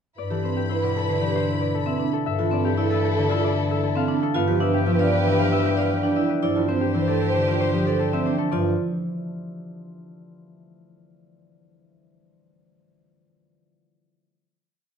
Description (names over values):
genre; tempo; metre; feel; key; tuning
classical, minimalist pattern music; 115 BPM; 4/4; straight; G mixolydian; A4 = 437 Hz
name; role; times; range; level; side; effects
Celtic harp; melody; 0.2-10.6 s; G4 to G5; -29 LUFS; left 10 dB; none
mellow French horn; second line; 0.2-8.3 s; A4 to C5; -29 LUFS; right 4 dB; none
rich chamber string section; sustained chords; 0.2-8.4 s; E4 to B5; -31 LUFS; left 1 dB; none
mellow bass clarinet; bass; 0.2-8.8 s; G2; -26 LUFS; left 3 dB; none
concert harp; accompaniment; 0.3-10.3 s; B2 to D4; -26 LUFS; left 1 dB; none
vibraphone with medium mallets; arpeggios; 0.3-8.8 s; C4 to D5; -26 LUFS; right 9 dB; none
room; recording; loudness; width
moderate large studio reverb, RT60 1.3 s; dark, warm production; -20 LUFS; side -7 dB against mid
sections
0.2-8.5 A section; 8.5-10.6 final chord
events
none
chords
0.2 Cmaj9/G; 2.3 Fmaj9/G; 4.4 G7; 6.4 Dm11/G; 8.5 G5